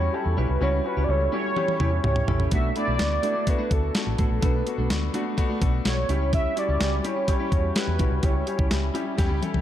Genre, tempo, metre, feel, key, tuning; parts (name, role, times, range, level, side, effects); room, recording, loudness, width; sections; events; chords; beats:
1980s-style pop; 126 BPM; 4/4; straight; A4 = 440 Hz
warm velvety synth lead; melody; 0.0-8.7 s; A4 to E5; -28 LUFS; right 1 dB; chorus, digital delay
clear concert grand piano; accompaniment; 0.0-9.6 s; G3 to A4; -30 LUFS; left 4 dB
clean electric guitar; riff; 0.0-9.6 s; A3 to G4; -33 LUFS; right 5 dB; wide subtle chorus
vintage muted fingered electric bass; bass; 0.0-9.6 s; A1 to E2; -26 LUFS; equal
clean 12-bit digital drum machine; drums; 1.6-9.6 s; hi-hat, kick drum, snare drum, toms; -25 LUFS; equal
light reverb, digital ambience; dark, warm production; -22 LUFS; side -11 dB against mid
0.0-9.6 A section
drum fill 1.6-2.5, 9.2-9.6
0.0 C#dim; 2.5 Bm7; 6.1 C#dim
0.14 | 0.62 1.09 1.57 2.04 | 2.52 3.00 3.47 3.95 | 4.42 4.90 5.38 5.85 | 6.33 6.81 7.28 7.76 | 8.23 8.71 9.19